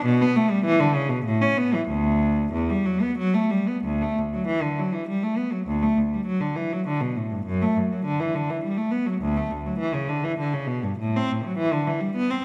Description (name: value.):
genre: classical, baroque-style suite movement for unaccompanied cello.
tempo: 89-104 BPM.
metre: 3/4.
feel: rubato.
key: D major.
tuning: A4 = 441 Hz.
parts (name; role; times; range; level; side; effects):
rich cello; solo; 0.0-12.4 s; D2 to C#4; -24 LUFS; equal; none.
room: wet recital hall reverb, RT60 1.4 s.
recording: none.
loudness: -24 LUFS.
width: mono.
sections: 0.0-3.8 A section; 3.8-12.4 B section.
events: none.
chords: none.